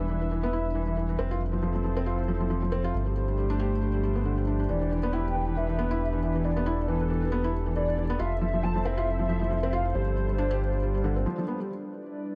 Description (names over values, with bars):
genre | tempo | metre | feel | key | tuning
IDM | 137 BPM | 4/4 | swing 56% on 16ths | E phrygian | A4 = 440 Hz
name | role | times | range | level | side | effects
warbly tape-like pad | sustained chords | 0.0-12.4 s | E3 to E5 | -36 LUFS | equal | chorus, built-in reverb
felt-muted upright piano | arpeggios | 0.0-11.7 s | D3 to G4 | -34 LUFS | equal | low-pass filter, tape echo
round analog bass | bass | 0.0-11.3 s | E1 to G1 | -31 LUFS | equal | tube saturation
warbly nostalgic lead | melody | 4.7-11.4 s | B4 to A5 | -35 LUFS | equal | ensemble chorus, tape echo
room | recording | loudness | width
light reverb | nothing above 10.6 kHz | -28 LUFS | mono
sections
0.0-11.7 A section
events
break 11.3-11.7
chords
0.0 Em7; 1.2 Fmaj7; 2.9 G9sus4; 4.7 Em7; 8.2 Fmaj7; 9.9 G9sus4; 11.7 Em7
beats
0.31 0.75 | 1.19 1.62 2.06 2.50 | 2.94 3.38 3.81 4.25 | 4.69 5.13 5.57 6.00 | 6.44 6.88 7.32 7.76 | 8.19 8.63 9.07 9.51 | 9.95 10.38 10.82 11.26 | 11.70 12.14